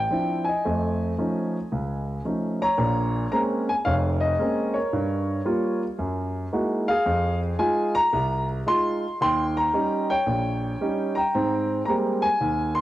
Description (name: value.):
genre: solo jazz.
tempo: 112 BPM.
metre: 4/4.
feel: swing 66% on 8ths.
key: Bb minor.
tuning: A4 = 440 Hz.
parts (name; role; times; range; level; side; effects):
warm grand piano; solo; 0.0-12.8 s; F1 to C6; -22 LUFS; equal; cassette tape.
room: moderate lush hall reverb, RT60 2.5 s.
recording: home recording on cassette.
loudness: -22 LUFS.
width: side -14 dB against mid.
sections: 0.0-2.8 A section; 2.8-12.8 B section.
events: none.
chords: 0.0 Dm9; 0.6 F7alt; 2.8 Bbm9; 4.9 Gm7b5; 6.0 Gb13; 7.1 Fm7; 9.2 Eb7; 11.3 Abmaj9.